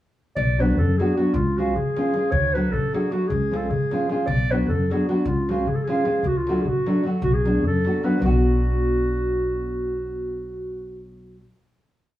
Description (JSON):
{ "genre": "balkan folk, Balkan wedding band", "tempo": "305 BPM (eighths)", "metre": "5/8", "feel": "straight", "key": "B dorian sharp4", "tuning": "A4 = 438 Hz", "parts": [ { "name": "dark clarinet", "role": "melody", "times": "0.4-11.0 s", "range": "E#4 to D5", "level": "-25 LUFS", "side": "equal", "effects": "none" }, { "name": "upright bass", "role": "bass", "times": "0.4-11.4 s", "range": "G#1 to F#2", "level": "-24 LUFS", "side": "equal", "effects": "none" }, { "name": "darbuka", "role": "percussion", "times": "0.4-8.4 s", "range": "none", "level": "-29 LUFS", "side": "left 2 dB", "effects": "none" }, { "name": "nylon-string guitar", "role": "accompaniment", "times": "0.6-11.4 s", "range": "E#3 to F#4", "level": "-24 LUFS", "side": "equal", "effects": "none" } ], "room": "moderate stone room reverb, RT60 0.9 s", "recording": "band playing live in one room, small room ambience", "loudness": "-20 LUFS", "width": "side -14 dB against mid", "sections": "0.4-8.2 A section; 8.2-10.2 final chord", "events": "none", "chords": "0.4 Bm; 1.3 C#; 2.3 D; 3.3 C#; 4.3 Bm; 5.3 C#; 6.2 D; 7.2 Bm" }